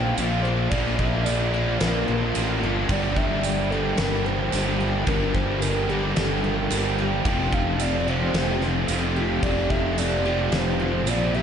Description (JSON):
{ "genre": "rock, shoegaze and dream pop", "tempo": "110 BPM", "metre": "4/4", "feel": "straight", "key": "unclear", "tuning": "A4 = 440 Hz", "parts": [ { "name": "pure breathy sine lead", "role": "melody", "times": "0.0-11.4 s", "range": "G4 to G5", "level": "-30 LUFS", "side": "equal", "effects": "chorus, diffuse ambient delay" }, { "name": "picked twelve-string acoustic guitar", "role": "arpeggios", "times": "0.0-11.4 s", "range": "F3 to G4", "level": "-35 LUFS", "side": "left 4 dB", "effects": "none" }, { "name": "distorted electric guitar", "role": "riff", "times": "0.0-11.4 s", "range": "F2 to Bb3", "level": "-29 LUFS", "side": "equal", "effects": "distortion" }, { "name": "raw garage guitar", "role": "riff", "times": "0.0-11.4 s", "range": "F2 to G4", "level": "-30 LUFS", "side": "right 9 dB", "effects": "overdrive, reverse reverb" }, { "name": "thick fuzz guitar", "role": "riff", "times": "0.0-11.4 s", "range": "F2 to Bb3", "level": "-29 LUFS", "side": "left 7 dB", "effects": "distortion, ensemble chorus" }, { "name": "fuzz fingered electric bass", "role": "bass", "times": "0.0-11.4 s", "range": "F1 to Bb1", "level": "-26 LUFS", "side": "equal", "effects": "overdrive" }, { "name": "huge arena drum kit", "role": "drums", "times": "0.2-11.2 s", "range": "crash cymbal, kick drum, snare drum", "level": "-29 LUFS", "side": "right 1 dB", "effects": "none" }, { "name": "tambourine", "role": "percussion", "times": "0.2-11.2 s", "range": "none", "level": "-35 LUFS", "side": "right 11 dB", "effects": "none" } ], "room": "moderate lush hall reverb, RT60 1.6 s, studio reverb", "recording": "dreamy mix soaked in reverb, nothing above 11.0 kHz", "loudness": "-21 LUFS", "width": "side -8 dB against mid", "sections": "0.0-11.4 A section", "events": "none", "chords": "0.0 Bbadd9; 2.9 Gm7; 7.3 Fadd9" }